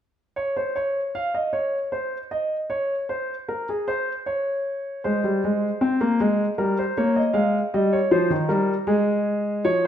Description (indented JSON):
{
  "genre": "classical, baroque-style two-part invention for grand piano",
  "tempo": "78 BPM",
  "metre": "3/4",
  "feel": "straight",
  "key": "unclear",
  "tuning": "A4 = 438 Hz",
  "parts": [
    { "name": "warm concert grand piano", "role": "solo", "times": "0.4-9.9 s", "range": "Eb3 to F5", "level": "-21 LUFS", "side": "equal", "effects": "none" }
  ],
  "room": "wet recital hall reverb, RT60 1.3 s",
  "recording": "none",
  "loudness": "-21 LUFS",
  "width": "side -9 dB against mid",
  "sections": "0.4-9.9 A section",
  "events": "none",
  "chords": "0.4 N.C.; 5.0 Ab; 6.6 Eb7/G; 7.3 Ab; 8.9 N.C.",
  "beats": "| 0.37 1.16 1.94 | 2.71 3.49 4.26 | 5.03 5.80 6.57 | 7.34 8.11 8.88 | 9.65"
}